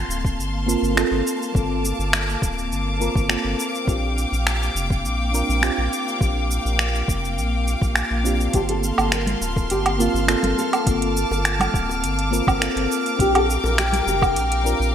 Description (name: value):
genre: sunset chillout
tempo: 103 BPM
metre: 4/4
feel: straight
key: G minor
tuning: A4 = 440 Hz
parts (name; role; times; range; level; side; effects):
- mellow FM electric piano; accompaniment; 0.0-14.9 s; Bb3 to A5; -26 LUFS; moving between left 5 dB and right 4 dB; chorus, phaser, auto-pan, vintage 12-bit sampler grit, digital delay
- warm studio string section; sustained chords; 0.0-14.9 s; Bb3 to D6; -26 LUFS; left 2 dB; none
- round analog bass; bass; 0.0-14.9 s; D1 to Bb1; -24 LUFS; equal; none
- smooth R&B drum kit; drums; 0.1-14.9 s; finger snaps, hi-hat, shaker, woodblock; -24 LUFS; right 2 dB; overdrive, small room ambience, gated reverb
- electronic kick drum; drums; 0.2-14.3 s; none; -22 LUFS; equal; overdrive, small room ambience
- nylon-string guitar; melody; 8.5-14.9 s; F4 to Bb4; -24 LUFS; left 1 dB; lush chorus, digital delay
- drifting glass-harmonics texture; texture; 9.2-14.9 s; F6; -32 LUFS; right 4 dB; chorus, built-in reverb
- bongos and congas; percussion; 9.0-14.3 s; none; -32 LUFS; left 2 dB; none
room: wet lush hall reverb, RT60 1.8 s, digital ambience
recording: bright 1980s-style digital production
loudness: -19 LUFS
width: side -9 dB against mid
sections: 0.0-14.9 A section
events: none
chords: 0.0 Gm11; 3.9 Bb6; 8.5 Gm11; 13.2 Bb6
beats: 0.39 0.97 | 1.55 2.13 2.71 3.30 | 3.88 4.46 5.04 5.63 | 6.21 6.79 7.38 7.96 | 8.54 9.12 9.71 10.29 | 10.87 11.45 12.04 12.62 | 13.20 13.78 14.37